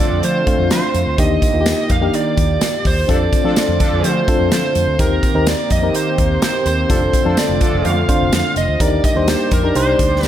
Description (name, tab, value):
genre	1980s-style pop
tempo	126 BPM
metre	4/4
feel	straight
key	unclear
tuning	A4 = 442 Hz
part	bluesy overdriven lead guitar	melody	0.0-10.3 s	Bb4 to F5	-20 LUFS	right 3 dB	distortion, tape echo
part	FM electric piano with auto-pan	accompaniment	0.0-10.3 s	A3 to C5	-20 LUFS	left 3 dB	none
part	warm analog pad	sustained chords	0.0-10.3 s	D3 to D5	-23 LUFS	equal	chorus
part	analog synth brass	stabs	0.0-0.2, 3.1-7.9 s	F3 to A4	-26 LUFS	equal	chorus
part	vintage muted fingered electric bass	bass	0.1-10.3 s	F1 to F3	-20 LUFS	equal	none
part	modern studio drum kit	drums	0.2-10.3 s	hi-hat, kick drum, snare drum, tambourine	-18 LUFS	equal	none
part	tambourine	percussion	0.7-10.3 s	none	-36 LUFS	left 7 dB	none
room	moderate plate reverb, RT60 1.6 s, small room ambience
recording	dreamy mix soaked in reverb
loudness	-13 LUFS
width	side -11 dB against mid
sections	0.0-10.3 A section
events	none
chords	0.0 F6; 1.2 Ebmaj7; 3.1 F6; 5.0 Cm7/Eb; 6.9 F6; 8.8 Ebmaj7; 9.8 Cmadd9